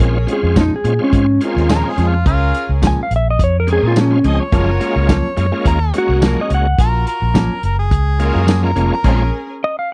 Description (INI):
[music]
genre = straight-eighth soul blues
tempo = 106 BPM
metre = 4/4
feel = swing 53% on 16ths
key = Bb minor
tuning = A4 = 439 Hz
[part]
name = clean lap steel guitar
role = melody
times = 0.0-9.9 s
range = Db4 to Ab5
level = -19 LUFS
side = equal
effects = none
[part]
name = bright tonewheel organ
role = accompaniment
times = 0.0-9.2 s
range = Ab3 to Ab4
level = -24 LUFS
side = equal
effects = slow rotary speaker, overdrive, chorus vibrato
[part]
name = warm chamber string section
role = sustained chords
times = 0.0-9.5 s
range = Db4 to Db5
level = -31 LUFS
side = equal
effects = none
[part]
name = vintage muted fingered electric bass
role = bass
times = 0.0-9.3 s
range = F1 to Bb2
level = -18 LUFS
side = equal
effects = none
[part]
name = warm soul drum kit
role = drums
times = 0.0-9.2 s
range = crash cymbal, hi-hat, kick drum, snare drum, tambourine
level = -19 LUFS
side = equal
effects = none
[part]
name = mellow electric guitar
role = stabs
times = 0.6-9.2 s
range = Gb2 to Db4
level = -22 LUFS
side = equal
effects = none
[part]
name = mellow harmonica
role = second line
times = 1.7-9.3 s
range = F4 to Eb5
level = -24 LUFS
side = equal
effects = overdrive
[sound]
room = small room ambience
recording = dry, close 1970s-style studio recording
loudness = -15 LUFS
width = mono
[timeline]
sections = 0.0-9.9 A section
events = stop 9.0-9.9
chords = 0.0 Bbm7; 4.5 Gbmaj7; 9.0 Bbm7